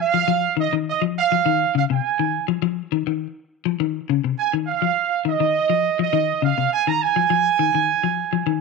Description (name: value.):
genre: afrobeat.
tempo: 103 BPM.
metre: 4/4.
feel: straight.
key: unclear.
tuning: A4 = 441 Hz.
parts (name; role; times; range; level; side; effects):
warm horn section; melody; 0.0-8.6 s; Eb5 to Bb5; -20 LUFS; right 10 dB; none.
clean electric guitar; arpeggios; 0.0-8.6 s; C3 to F3; -22 LUFS; left 15 dB; none.
room: moderate spring reverb, RT60 1.1 s, small room reverb.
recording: 1960s-style stereo with parts hard left and right.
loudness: -18 LUFS.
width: side -3 dB against mid.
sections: 0.0-8.6 A section.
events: none.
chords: 0.0 Cmadd11 (rootless).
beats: 0.28 0.87 1.45 | 2.04 2.62 3.21 3.79 | 4.38 4.96 5.55 6.13 | 6.72 7.30 7.89 8.47.